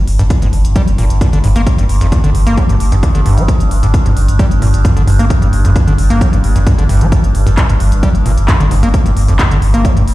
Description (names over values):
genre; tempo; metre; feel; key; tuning
driving peak-time techno; 132 BPM; 4/4; straight; G phrygian; A4 = 437 Hz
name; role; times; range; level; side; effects
overtone-sweeping drone; drone; 0.1-10.1 s; G2; -18 LUFS; equal; chorus, built-in reverb, sidechain pumping
saturated sub bass; bass; 0.1-10.1 s; G1; -13 LUFS; equal; sidechain pumping, low-pass filter
techno drum kit; drums; 0.1-10.1 s; handclaps, hi-hat; -25 LUFS; equal; overdrive
overdriven acid bass; riff; 0.2-10.0 s; F2 to Bb3; -16 LUFS; equal; cassette tape, sidechain pumping, ping-pong delay
electronic kick drum; drums; 0.3-9.9 s; none; -13 LUFS; equal; overdrive
room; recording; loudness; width
digital ambience; played on a big sound system in a bare room, large studio reverb; -9 LUFS; side -17 dB against mid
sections
0.0-10.1 A section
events
none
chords
0.0 G5